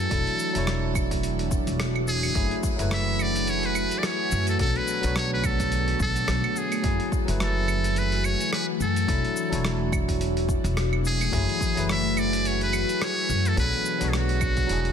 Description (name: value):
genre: sunset chillout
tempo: 107 BPM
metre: 4/4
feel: swing 57% on 16ths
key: F# minor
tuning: A4 = 440 Hz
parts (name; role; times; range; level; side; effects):
- trumpet with metal mute; melody; 0.0-14.9 s; F#4 to E5; -28 LUFS; equal; digital delay
- bright tine electric piano; accompaniment; 0.0-14.9 s; F#3 to C#5; -31 LUFS; moving between left 10 dB and right 8 dB; auto-pan, ping-pong delay
- ethereal airy pad; sustained chords; 0.0-14.9 s; D3 to G#5; -30 LUFS; left 2 dB; ensemble chorus, built-in reverb, phaser
- upright bass; bass; 0.0-14.9 s; E1 to F#2; -27 LUFS; equal; none
- dusty soul sampler-style drum kit; drums; 0.1-14.9 s; claves, hi-hat, rim click, shaker; -32 LUFS; right 1 dB; overdrive, small room ambience
- electronic kick drum; drums; 0.1-14.7 s; none; -28 LUFS; equal; overdrive, small room ambience
room: light reverb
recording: dense, heavily limited modern master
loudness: -22 LUFS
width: side -8 dB against mid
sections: 0.0-14.9 A section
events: none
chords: 0.1 E9sus4; 2.4 F#m9; 4.6 Bm7; 6.8 F#m9; 9.1 E9sus4; 11.3 F#m9; 13.6 Bm7